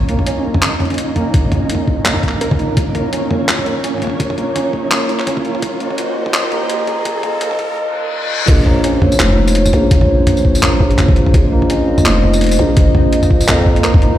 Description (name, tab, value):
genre	half-time drum and bass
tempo	168 BPM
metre	4/4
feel	swing 57% on 16ths, half-time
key	Bb minor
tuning	A4 = 436 Hz
part	dark analog pad	sustained chords	0.0-14.2 s	Bb3 to Eb5	-20 LUFS	equal	chorus, sidechain pumping
part	felt-muted upright piano	arpeggios	0.0-14.2 s	Bb3 to Bb4	-22 LUFS	right 2 dB	low-pass filter, ping-pong delay
part	riser and reverse cymbal	sound effects	0.3-8.5 s	none	-26 LUFS	left 1 dB	none
part	flickering grainy texture	texture	0.0-7.8 s	Db4 to Db5	-24 LUFS	equal	built-in reverb
part	boom bap sampler-style drum kit	drums	0.1-14.1 s	crash cymbal, handclaps, hi-hat, tambourine, toms	-18 LUFS	equal	small room ambience
part	electronic kick drum	drums	1.3-14.0 s	none	-12 LUFS	equal	small room ambience
part	growling 808-style bass	bass	8.5-13.8 s	F1 to F2	-14 LUFS	equal	none
room	light reverb, digital ambience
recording	played on a big sound system in a bare room, large studio reverb, high-pass filter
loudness	-12 LUFS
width	side -12 dB against mid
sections	0.0-8.5 A section; 8.5-14.2 B section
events	build-up 0.0-8.5; filter sweep on analog synth pad 0.0-8.5; filter sweep on felt piano 0.0-8.5; riser 0.3-7.8; reverse cymbal 7.8-8.5; drop 8.5-14.2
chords	0.0 Bbm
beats	0.27 0.63 0.98 | 1.34 1.70 2.06 2.41 | 2.77 3.13 3.48 3.84 | 4.20 4.56 4.91 5.27 | 5.63 5.99 6.34 6.70 | 7.06 7.41 7.77 8.13 | 8.48 8.84 9.20 9.56 | 9.91 10.27 10.63 10.98 | 11.34 11.70 12.06 12.41 | 12.77 13.13 13.48 13.84